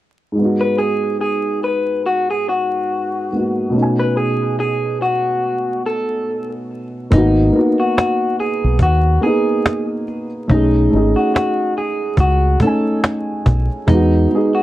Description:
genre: lo-fi hip hop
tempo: 71 BPM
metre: 4/4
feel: swing 56% on 16ths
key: G# minor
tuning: A4 = 439 Hz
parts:
  - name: dark upright piano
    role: accompaniment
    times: 0.3-14.6 s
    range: G#2 to G#5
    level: -19 LUFS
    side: equal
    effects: none
  - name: electric guitar through a small old amp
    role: melody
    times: 0.6-14.6 s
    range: D#4 to B4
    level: -19 LUFS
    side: equal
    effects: none
  - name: deep dub fingered electric bass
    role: bass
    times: 7.1-14.3 s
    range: G#1 to E2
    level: -15 LUFS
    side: equal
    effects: none
  - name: cajon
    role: drums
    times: 7.1-14.4 s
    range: none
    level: -16 LUFS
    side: equal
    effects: vintage 12-bit sampler grit
room: light reverb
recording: worn, warbling old tape, cassette tape, vinyl crackle, warbly pitch drift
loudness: -14 LUFS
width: side -14 dB against mid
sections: 0.4-7.1 A section; 7.1-14.6 B section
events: none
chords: 0.4 G#m7; 3.7 B13; 7.1 G#m7; 10.5 B13; 13.9 Emaj9

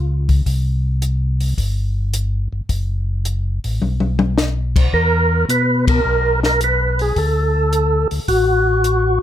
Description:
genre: soul jazz organ trio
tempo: 107 BPM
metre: 4/4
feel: swing 69% on 8ths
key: unclear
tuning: A4 = 440 Hz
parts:
  - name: mellow tonewheel organ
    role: bass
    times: 0.0-9.2 s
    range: F#1 to B2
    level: -18 LUFS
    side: left 1 dB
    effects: overdrive, chorus vibrato, slow rotary speaker
  - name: compact cocktail drum kit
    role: drums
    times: 0.3-9.0 s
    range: crash cymbal, hi-hat, kick drum, ride cymbal, snare drum, toms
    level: -20 LUFS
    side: left 2 dB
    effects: none
  - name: percussive tonewheel organ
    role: melody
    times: 4.9-9.2 s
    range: F#4 to B4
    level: -17 LUFS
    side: right 1 dB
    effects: slow rotary speaker, overdrive, chorus vibrato, plate reverb
room: light reverb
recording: none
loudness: -15 LUFS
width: side -11 dB against mid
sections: 0.0-9.2 A section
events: drum fill 3.8-4.4; band accent 5.8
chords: 0.5 C5; 2.7 F#m; 3.8 N.C.; 4.9 E5; 7.2 D

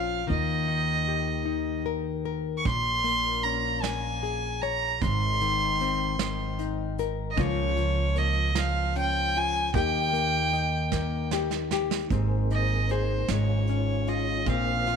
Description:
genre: acoustic folk duo or small band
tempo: 51 BPM (dotted quarters)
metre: 6/8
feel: straight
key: Ab major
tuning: A4 = 442 Hz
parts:
  - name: clear fiddle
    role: melody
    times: 0.0-15.0 s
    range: C5 to Db6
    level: -28 LUFS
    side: right 3 dB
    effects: none
  - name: nylon-string guitar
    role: accompaniment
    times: 0.0-15.0 s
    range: Ab2 to Db5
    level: -30 LUFS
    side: left 10 dB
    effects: none
  - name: upright bass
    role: bass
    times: 0.0-15.0 s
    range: Ab1 to Eb2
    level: -29 LUFS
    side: right 2 dB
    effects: none
  - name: vintage brush drum kit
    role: drums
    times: 2.7-15.0 s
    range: hi-hat, kick drum, snare drum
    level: -33 LUFS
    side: right 8 dB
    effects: none
  - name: mellow tonewheel organ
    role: sustained chords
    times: 12.1-15.0 s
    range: Bb3 to C5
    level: -36 LUFS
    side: right 1 dB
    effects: slow rotary speaker, chorus vibrato
room: light reverb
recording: 1960s-style stereo with parts hard left and right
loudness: -24 LUFS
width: side -6 dB against mid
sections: 0.0-12.1 A section; 12.1-15.0 B section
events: drum fill 10.9-12.1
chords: 0.3 Ebadd9; 2.7 Bbm7; 5.0 Abadd9; 7.4 Db6; 9.7 Eb; 12.1 Abadd9; 13.3 Db/Ab

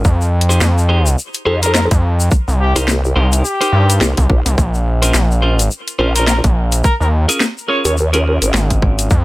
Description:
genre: glitch hop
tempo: 106 BPM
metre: 4/4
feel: swing 58% on 16ths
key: unclear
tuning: A4 = 440 Hz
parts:
  - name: clean electric guitar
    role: stabs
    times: 0.0-9.1 s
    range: Db4 to C5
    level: -21 LUFS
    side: equal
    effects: tremolo, sidechain pumping, dub echo
  - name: gritty driven synth bass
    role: bass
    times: 0.0-9.2 s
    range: Ab1 to G2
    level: -13 LUFS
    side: equal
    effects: overdrive
  - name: electronic kick drum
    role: drums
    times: 0.0-9.2 s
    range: none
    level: -14 LUFS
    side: equal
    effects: overdrive
  - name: tube shaker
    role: percussion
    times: 0.0-9.2 s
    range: none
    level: -23 LUFS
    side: left 3 dB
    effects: none
  - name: drum and bass drum kit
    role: drums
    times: 0.4-9.1 s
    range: hi-hat, snare drum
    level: -18 LUFS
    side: left 1 dB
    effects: overdrive
  - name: vowel-sweep wobble bass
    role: bass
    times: 1.5-8.5 s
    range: Ab1 to F2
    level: -14 LUFS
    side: equal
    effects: chorus
  - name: clear trumpet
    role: melody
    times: 1.6-7.9 s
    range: G4 to Db5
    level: -22 LUFS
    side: left 1 dB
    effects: dub echo
room: little or no reverb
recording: none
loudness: -12 LUFS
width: side -19 dB against mid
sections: 0.0-9.2 A section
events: none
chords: 0.0 Fm7; 2.3 Cm7; 4.6 Bbmadd9; 6.8 Eb7sus4

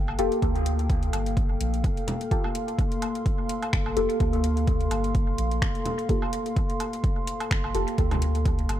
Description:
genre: dub techno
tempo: 127 BPM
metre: 4/4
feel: swing 56% on 16ths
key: unclear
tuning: A4 = 440 Hz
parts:
  - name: dark analog pad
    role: sustained chords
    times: 0.0-8.8 s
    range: Bb3 to C6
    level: -31 LUFS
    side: left 1 dB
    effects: chorus, sidechain pumping
  - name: soft dub sub bass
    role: bass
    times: 0.0-8.8 s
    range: F1 to D2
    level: -27 LUFS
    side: equal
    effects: tube saturation, sidechain pumping
  - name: woodblock and congas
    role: percussion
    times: 0.1-8.8 s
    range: none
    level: -37 LUFS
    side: right 1 dB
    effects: sidechain pumping on perc, dub echo
  - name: deep mellow chord stab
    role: stabs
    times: 0.2-8.8 s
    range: Bb3 to A4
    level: -30 LUFS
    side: left 1 dB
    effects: chorus, phaser, sidechain pumping, dub echo
  - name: deep house drum kit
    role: drums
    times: 0.2-8.8 s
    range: finger snaps, hi-hat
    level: -36 LUFS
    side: left 1 dB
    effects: overdrive, dub echo
  - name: electronic kick drum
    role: drums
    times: 0.4-8.6 s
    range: none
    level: -26 LUFS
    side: equal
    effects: overdrive
room: little or no reverb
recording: dark, warm production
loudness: -23 LUFS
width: side -12 dB against mid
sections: 0.0-8.8 A section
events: none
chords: 0.0 Gm9

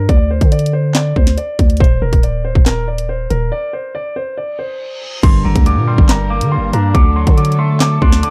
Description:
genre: hip hop, drill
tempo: 140 BPM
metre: 4/4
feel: half-time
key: G harmonic minor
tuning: A4 = 441 Hz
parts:
  - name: dark grand piano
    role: melody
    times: 0.0-8.3 s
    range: Bb4 to D6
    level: -24 LUFS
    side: equal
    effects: low-pass filter, digital delay
  - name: growling 808-style bass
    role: bass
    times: 0.0-8.2 s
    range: Eb1 to D3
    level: -18 LUFS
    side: equal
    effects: none
  - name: drill drum kit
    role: drums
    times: 0.1-8.3 s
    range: crash cymbal, handclaps, hi-hat, kick drum, snare drum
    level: -14 LUFS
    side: equal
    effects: none
  - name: reverse cymbal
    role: sound effects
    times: 4.6-5.2 s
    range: none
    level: -33 LUFS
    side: equal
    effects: none
  - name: twangy electric guitar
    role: accompaniment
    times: 5.2-8.3 s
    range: G2 to D4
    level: -23 LUFS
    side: equal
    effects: low-pass filter
  - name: dark symphonic string section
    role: sustained chords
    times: 5.2-8.3 s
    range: F#3 to Bb4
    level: -29 LUFS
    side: equal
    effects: none
room: little or no reverb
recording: dark, warm production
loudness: -14 LUFS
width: mono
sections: 0.0-5.2 A section; 5.2-8.3 B section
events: break 3.5-5.2; reverse cymbal 4.6-5.2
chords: 0.1 Csus2/D; 1.8 Cm9/Eb; 3.5 N.C.; 5.2 Gm; 6.9 D

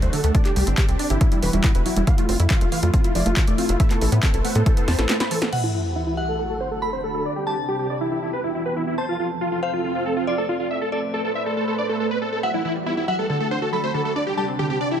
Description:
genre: uplifting trance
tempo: 139 BPM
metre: 4/4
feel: straight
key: E minor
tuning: A4 = 440 Hz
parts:
  - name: dense compressed supersaw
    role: melody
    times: 0.0-15.0 s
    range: E4 to B5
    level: -25 LUFS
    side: equal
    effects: sidechain pumping, low-pass filter, tape echo
  - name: lush unison pad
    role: sustained chords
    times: 0.0-15.0 s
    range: C3 to C5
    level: -29 LUFS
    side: equal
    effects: chorus, phaser, sidechain pumping
  - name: wide unison pluck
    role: arpeggios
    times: 0.0-5.5, 12.4-15.0 s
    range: D3 to G4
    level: -27 LUFS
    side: right 1 dB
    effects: sidechain pumping, tape echo
  - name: tight sequencer bass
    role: bass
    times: 0.0-5.1 s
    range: E1 to A2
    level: -21 LUFS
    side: equal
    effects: sidechain pumping
  - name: punchy analog drum machine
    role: drums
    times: 0.0-5.6 s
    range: crash cymbal, handclaps, hi-hat, snare drum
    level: -27 LUFS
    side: equal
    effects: sidechain pumping on hats, sidechain pumping on cymbals
  - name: electronic kick drum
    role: drums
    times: 0.3-4.7 s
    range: none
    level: -19 LUFS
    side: equal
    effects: none
  - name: glassy synth bell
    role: second line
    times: 5.5-15.0 s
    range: D5 to B5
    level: -29 LUFS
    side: equal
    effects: chorus, tremolo, dub echo
  - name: sub drop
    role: sound effects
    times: 5.5-7.3 s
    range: none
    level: -29 LUFS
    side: equal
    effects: none
room: light reverb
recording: none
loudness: -19 LUFS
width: side -9 dB against mid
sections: 0.0-5.5 A section; 5.5-15.0 B section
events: drum fill 4.9-5.5; break 5.1-5.5; impact 5.5-7.3; filter sweep on supersaw synth 5.5-15.0; filter sweep on analog synth pad 5.5-15.0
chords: 0.3 Csus2; 1.2 Emadd9; 2.1 Fmaj7; 3.8 Amadd9; 5.5 Emadd9; 6.4 D; 7.3 Csus2; 8.1 Emadd9; 9.0 F; 10.7 Amadd9; 12.4 Emadd9; 13.3 D; 14.2 Csus2

